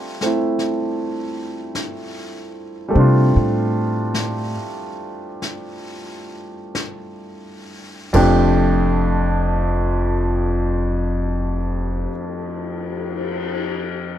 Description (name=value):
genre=jazz ballad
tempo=42-53 BPM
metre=4/4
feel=swing 68% on 8ths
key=F major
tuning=A4 = 441 Hz
part: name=clear grand piano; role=accompaniment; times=0.0-14.2 s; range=F2 to G4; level=-21 LUFS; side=equal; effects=none
part: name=jazz brush drum kit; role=drums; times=0.2-13.6 s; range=brushed snare drum, crash cymbal, cymbal swell, kick drum, snare drum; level=-30 LUFS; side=left 5 dB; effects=none
part: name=upright bass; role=bass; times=3.0-12.0 s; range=F1 to C3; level=-19 LUFS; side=equal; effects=none
room=little or no reverb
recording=none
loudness=-18 LUFS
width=side -11 dB against mid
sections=0.0-8.1 A section; 8.1-13.9 B section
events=slowing down 0.0-8.1; upright bass solo 0.0-8.1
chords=0.0 F6